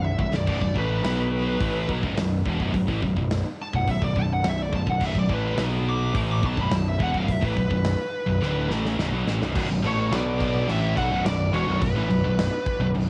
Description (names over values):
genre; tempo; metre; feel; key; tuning
heavy metal; 106 BPM; 4/4; straight; B minor; A4 = 440 Hz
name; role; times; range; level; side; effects
high-gain lead guitar; melody; 0.0-12.9 s; B4 to D6; -32 LUFS; equal; distortion, cassette tape
scooped high-gain guitar; riff; 0.0-13.1 s; B1 to B3; -33 LUFS; equal; none
scooped high-gain guitar; riff; 0.0-13.1 s; B1 to B3; -30 LUFS; equal; distortion, cassette tape
fuzz picked electric bass; bass; 0.0-13.1 s; B0 to B1; -30 LUFS; equal; overdrive
big rock drum kit; drums; 0.0-13.1 s; crash cymbal, hi-hat, kick drum, snare drum, toms; -32 LUFS; equal; cassette tape
biting overdriven guitar; riff; 9.5-13.1 s; B1 to B3; -32 LUFS; equal; cassette tape
lush unison pad; sustained chords; 9.6-13.1 s; F#3 to D5; -41 LUFS; equal; none
room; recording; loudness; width
small room ambience; home recording on cassette; -24 LUFS; mono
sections
0.0-9.5 A section; 9.5-13.1 B section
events
drum fill 0.0-0.5, 8.4-9.5; lead electric guitar solo 0.0-9.5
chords
0.0 Bm